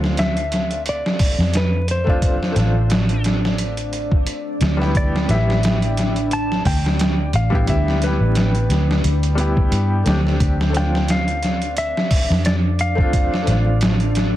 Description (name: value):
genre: trip hop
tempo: 88 BPM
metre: 4/4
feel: swing 56% on 16ths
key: D dorian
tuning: A4 = 440 Hz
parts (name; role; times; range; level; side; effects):
- felt-muted upright piano; accompaniment; 0.0-14.4 s; G3 to G4; -27 LUFS; left 1 dB; tremolo, tape echo
- deep dark ambient pad; sustained chords; 1.9-14.4 s; D4 to D5; -28 LUFS; equal; chorus, built-in reverb
- vintage muted fingered electric bass; bass; 0.0-14.4 s; A1 to G2; -19 LUFS; equal; none
- trip hop sampler-style drum kit; drums; 0.0-14.3 s; hi-hat, kick drum, snare drum; -20 LUFS; equal; overdrive
- clean lap steel guitar; melody; 0.2-14.1 s; B4 to A5; -26 LUFS; left 1 dB; tape echo
room: digital ambience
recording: dense, heavily limited modern master, vinyl crackle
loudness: -16 LUFS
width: side -13 dB against mid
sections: 0.0-14.4 A section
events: none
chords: 0.0 Dm7; 4.9 Em; 10.4 Dm7